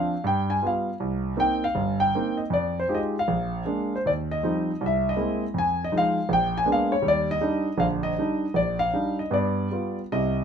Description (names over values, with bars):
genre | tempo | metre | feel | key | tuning
solo jazz | 159 BPM | 4/4 | swing 64% on 8ths, rubato | Eb major | A4 = 440 Hz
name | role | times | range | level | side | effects
warm concert grand piano | solo | 0.0-10.4 s | G1 to Ab5 | -22 LUFS | equal | none
room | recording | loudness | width
moderate studio reverb, RT60 0.8 s | minimal, uncompressed stereo recording | -22 LUFS | side -7 dB against mid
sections
0.0-10.1 A section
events
none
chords
0.3 G7; 1.0 Cm7; 2.5 Fm9; 3.3 Bb7; 4.1 Eb69; 4.8 C7alt; 5.6 Fm7; 6.3 Bb7b9; 7.0 Ebmaj7; 9.3 G7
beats
0.26 0.64 | 1.01 1.38 1.76 2.14 | 2.52 2.89 3.28 3.67 | 4.05 4.44 4.82 5.19 | 5.56 5.93 6.30 6.66 | 7.04 7.41 7.79 8.18 | 8.56 8.94 9.33 9.73 | 10.13